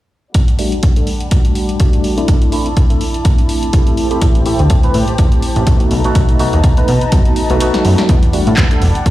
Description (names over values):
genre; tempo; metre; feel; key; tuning
filtered disco house; 124 BPM; 4/4; swing 56% on 16ths; E minor; A4 = 444 Hz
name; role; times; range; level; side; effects
clear chamber violin section; sustained chords; 0.3-9.1 s; G3 to A5; -24 LUFS; left 1 dB; sidechain pumping, low-pass filter
electronic kick drum; drums; 0.3-9.1 s; none; -12 LUFS; equal; none
punchy analog drum machine; drums; 0.3-9.1 s; handclaps, hi-hat, snare drum; -24 LUFS; equal; none
barky tine electric piano; accompaniment; 0.6-9.1 s; G3 to B4; -18 LUFS; equal; medium stereo tremolo, phaser, sidechain pumping, low-pass filter
plucky analog bass; bass; 4.2-9.1 s; E1 to B2; -14 LUFS; equal; tube saturation, sidechain pumping, low-pass filter
room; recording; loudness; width
light reverb, digital ambience; played on a big sound system in a bare room, large studio reverb; -11 LUFS; side -15 dB against mid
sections
0.3-8.1 A section; 8.1-9.1 B section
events
filter sweep 0.3-8.1, 8.1-9.1; kick drops out 7.6-8.1; drum fill 7.7-8.1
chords
0.3 Em11 (rootless); 2.3 C69; 4.0 Am7; 5.9 B7; 8.1 Em11